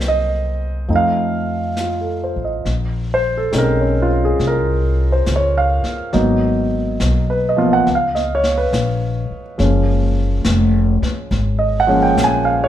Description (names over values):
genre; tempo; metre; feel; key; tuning
jazz ballad; 69 BPM; 4/4; swing 67% on 8ths; Bb minor; A4 = 440 Hz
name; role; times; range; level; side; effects
warm concert grand piano; accompaniment; 0.0-12.7 s; F3 to Ab5; -17 LUFS; right 1 dB; none
upright bass; bass; 0.0-12.7 s; F1 to F2; -19 LUFS; left 1 dB; none
vintage brush drum kit; drums; 0.0-12.7 s; brushed snare drum, hi-hat, kick drum, snare drum; -26 LUFS; left 2 dB; none
room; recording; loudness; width
moderate large studio reverb, RT60 0.9 s; band playing live in one room; -15 LUFS; side -11 dB against mid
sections
0.0-2.6 A section; 2.6-12.7 B section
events
none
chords
0.0 Cm7b5; 0.9 F7; 2.6 Bbm11; 6.1 Abm7; 7.9 Bbmadd11; 9.6 Gbmaj9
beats
0.00 0.88 1.76 | 2.64 3.52 4.39 5.26 | 6.13 7.00 7.86 8.72 | 9.58 10.45 11.31 12.17